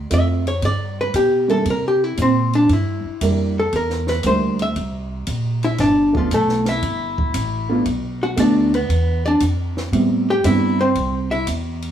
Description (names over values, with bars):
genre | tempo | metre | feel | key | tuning
jazz, small-group swing and bop | 116 BPM | 4/4 | swing 69% on 8ths | unclear | A4 = 439 Hz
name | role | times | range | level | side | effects
upright bass | bass | 0.0-11.9 s | G1 to C3 | -22 LUFS | equal | none
archtop guitar, miked and amplified | melody | 0.1-11.5 s | F3 to G5 | -19 LUFS | left 1 dB | plate reverb
warm upright piano | accompaniment | 0.1-10.8 s | G3 to F#4 | -20 LUFS | right 4 dB | none
compact cocktail drum kit | drums | 0.1-11.9 s | hi-hat, kick drum, ride cymbal, snare drum | -30 LUFS | right 1 dB | none
room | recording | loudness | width
wet studio reverb, RT60 0.5 s | heard from further back in the room, small room ambience | -16 LUFS | side -10 dB against mid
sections
0.0-11.9 A section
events
hollow-body jazz guitar solo 0.0-11.9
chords
0.0 Dm7; 0.6 G; 1.7 C7; 5.8 G7; 7.9 Bm7; 8.9 E5; 9.9 Am7